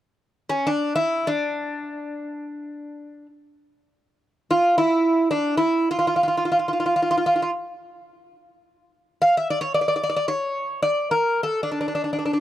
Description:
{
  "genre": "greek folk",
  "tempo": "free time",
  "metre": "none",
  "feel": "none",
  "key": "D harmonic minor",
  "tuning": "A4 = 440 Hz",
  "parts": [
    { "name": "Greek bouzouki", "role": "melody", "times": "0.5-12.4 s", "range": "C#4 to F5", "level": "-20 LUFS", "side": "equal", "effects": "none" }
  ],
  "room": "small room ambience",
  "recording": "dry, close 1970s-style studio recording",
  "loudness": "-20 LUFS",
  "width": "side -12 dB against mid",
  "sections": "0.0-12.4 A section",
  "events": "none",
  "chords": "none"
}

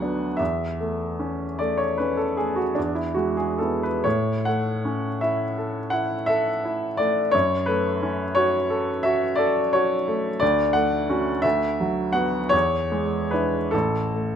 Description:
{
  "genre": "classical, romantic nocturne for solo piano",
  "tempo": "44-60 BPM (dotted quarters)",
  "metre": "9/8",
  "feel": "rubato",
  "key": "A major",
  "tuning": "A4 = 440 Hz",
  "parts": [
    { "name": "clear baby grand piano", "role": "solo", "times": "0.0-14.4 s", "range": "A1 to G#5", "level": "-21 LUFS", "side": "equal", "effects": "none" }
  ],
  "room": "moderate large studio reverb, RT60 1.1 s",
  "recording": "none",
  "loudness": "-21 LUFS",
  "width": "side -8 dB against mid",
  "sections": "0.0-14.4 A section",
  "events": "none",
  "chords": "0.4 A/E; 2.8 E; 4.0 A; 7.3 F#m; 10.4 Dmaj7; 11.4 Bm/D; 12.5 E7; 13.7 N.C."
}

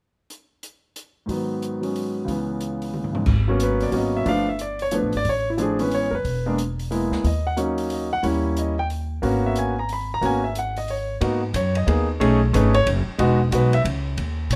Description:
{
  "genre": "jazz piano trio",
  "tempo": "181 BPM",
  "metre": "3/4",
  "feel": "swing 63% on 8ths",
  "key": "G# minor",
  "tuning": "A4 = 440 Hz",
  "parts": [
    { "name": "open jazz drum kit", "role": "drums", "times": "0.3-14.6 s", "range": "crash cymbal, hi-hat, kick drum, ride cymbal, snare drum, toms", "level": "-33 LUFS", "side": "equal", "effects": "none" },
    { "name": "clear grand piano", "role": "melody", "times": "1.3-14.6 s", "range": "C#2 to B5", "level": "-24 LUFS", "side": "equal", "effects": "none" },
    { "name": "upright bass", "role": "bass", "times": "3.3-14.6 s", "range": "E1 to A#2", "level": "-26 LUFS", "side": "equal", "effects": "none" }
  ],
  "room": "light reverb",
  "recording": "none",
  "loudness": "-23 LUFS",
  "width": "mono",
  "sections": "1.3-3.3 A section; 3.3-11.2 B section; 11.2-14.6 C section",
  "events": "drum fill 2.9-3.3",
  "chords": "0.3 N.C.; 1.3 G#m7; 2.3 C#m7; 3.3 G#m11; 4.3 G9; 5.3 Amaj7; 6.2 E(#11); 7.2 D#m7; 9.2 G#m11; 11.2 G#m9; 12.2 B13; 13.2 Emaj7"
}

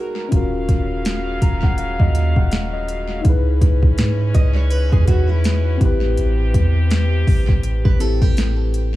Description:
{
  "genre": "contemporary R&B",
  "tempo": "82 BPM",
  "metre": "4/4",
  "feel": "swing 58% on 16ths",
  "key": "unclear",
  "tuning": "A4 = 440 Hz",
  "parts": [
    { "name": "mellow tine electric piano", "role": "accompaniment", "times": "0.0-9.0 s", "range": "B3 to A#5", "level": "-26 LUFS", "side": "left 5 dB", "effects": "none" },
    { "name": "muted French horn section", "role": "sustained chords", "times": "0.0-9.0 s", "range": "B2 to E#5", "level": "-29 LUFS", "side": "equal", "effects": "none" },
    { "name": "fingerpicked steel-string acoustic guitar", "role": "arpeggios", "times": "0.0-9.0 s", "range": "E4 to D#5", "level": "-30 LUFS", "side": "right 7 dB", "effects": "tape echo" },
    { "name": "soft 808-style bass", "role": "bass", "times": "0.3-9.0 s", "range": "D#1 to G#2", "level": "-18 LUFS", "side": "equal", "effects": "none" },
    { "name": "smooth R&B drum kit", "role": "drums", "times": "0.3-8.9 s", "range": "hi-hat, kick drum, snare drum", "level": "-17 LUFS", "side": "equal", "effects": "overdrive" }
  ],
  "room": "digital ambience",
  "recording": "echo-heavy mix, small room reverb",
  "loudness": "-15 LUFS",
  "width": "side -16 dB against mid",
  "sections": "0.0-9.0 A section",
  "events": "tine electric piano fill 1.1-3.2",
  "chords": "0.3 D#m9; 3.2 C#m9; 5.8 Am9"
}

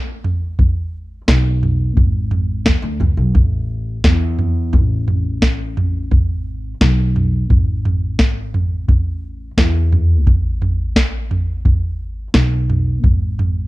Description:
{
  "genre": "indie folk with a building arrangement",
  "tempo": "87 BPM",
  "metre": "4/4",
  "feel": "straight",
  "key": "unclear",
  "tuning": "A4 = 442 Hz",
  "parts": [
    { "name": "upright bass", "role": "bass", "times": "0.0-13.7 s", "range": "G#1 to E2", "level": "-19 LUFS", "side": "equal", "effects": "none" },
    { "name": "soft vintage rhythm box", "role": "drums", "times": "0.2-13.5 s", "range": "kick drum, snare drum, toms", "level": "-15 LUFS", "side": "equal", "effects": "none" }
  ],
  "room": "little or no reverb",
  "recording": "dry, close 1970s-style studio recording, faint mains hum",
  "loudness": "-14 LUFS",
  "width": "side -19 dB against mid",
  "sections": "0.0-13.7 A section",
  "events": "none",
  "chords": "none"
}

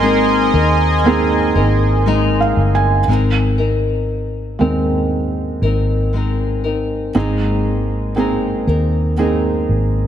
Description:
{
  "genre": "pop ballad",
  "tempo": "59 BPM",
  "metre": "4/4",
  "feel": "straight",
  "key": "Ab major",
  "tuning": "A4 = 437 Hz",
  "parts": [
    { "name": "felt-muted upright piano", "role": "accompaniment", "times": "0.0-10.1 s", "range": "Ab2 to Ab5", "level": "-19 LUFS", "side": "right 4 dB", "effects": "none" },
    { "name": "chorused pulse-width pad", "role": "sustained chords", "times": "0.0-3.0 s", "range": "Bb4 to C6", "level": "-18 LUFS", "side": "right 2 dB", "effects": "none" },
    { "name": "nylon-string guitar", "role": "arpeggios", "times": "0.0-10.1 s", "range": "Ab3 to Bb4", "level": "-20 LUFS", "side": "left 6 dB", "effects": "none" },
    { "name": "vintage muted fingered electric bass", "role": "bass", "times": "0.0-10.1 s", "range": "G1 to Eb2", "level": "-18 LUFS", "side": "equal", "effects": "none" }
  ],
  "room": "light reverb, small room reverb",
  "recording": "none",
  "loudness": "-14 LUFS",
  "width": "side -10 dB against mid",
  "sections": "0.0-3.1 A section; 3.1-7.1 B section; 7.1-10.1 C section",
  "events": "felt piano fill 1.6-3.1; felt piano solo 3.1-7.1",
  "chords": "0.0 Abadd9"
}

